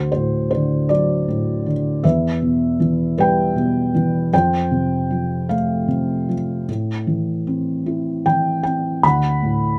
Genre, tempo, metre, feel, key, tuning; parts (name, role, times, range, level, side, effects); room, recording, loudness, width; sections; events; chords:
classical, lyrical solo piano; 52 BPM (dotted quarters); 6/8; rubato; A minor; A4 = 440 Hz
felt-muted upright piano; solo; 0.0-9.8 s; D2 to B5; -19 LUFS; equal
light reverb; close, detailed microphones; -19 LUFS; mono
0.0-9.8 A section
0.0 D; 2.0 Em; 4.3 F; 6.7 Am; 9.0 D